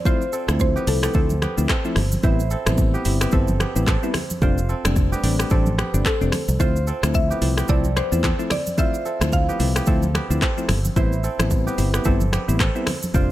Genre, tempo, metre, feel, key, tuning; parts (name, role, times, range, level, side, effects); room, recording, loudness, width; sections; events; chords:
afrobeats; 110 BPM; 4/4; swing 58% on 16ths; A minor; A4 = 439 Hz
kora; riff; 0.0-13.3 s; B3 to C5; -29 LUFS; right 4 dB; ping-pong delay
mallet-like synth pluck; melody; 0.1-1.9, 6.1-10.1 s; A4 to F5; -27 LUFS; left 1 dB; chorus, ping-pong delay
soft electric-piano-like synth keys; accompaniment; 0.1-13.3 s; F3 to E4; -26 LUFS; left 2 dB; chorus, tremolo
afro-pop drum kit; drums; 0.1-13.3 s; finger snaps, handclaps, hi-hat, kick drum, rim click, shaker; -22 LUFS; equal
congas; percussion; 0.1-13.3 s; -30 LUFS; right 1 dB
fingered electric bass; bass; 0.5-13.3 s; F1 to E2; -22 LUFS; equal
digital ambience; -18 LUFS; side -14 dB against mid
0.0-13.3 A section
0.0 Dm7; 2.2 Am7; 4.4 F6; 6.6 Dm7; 11.0 Am7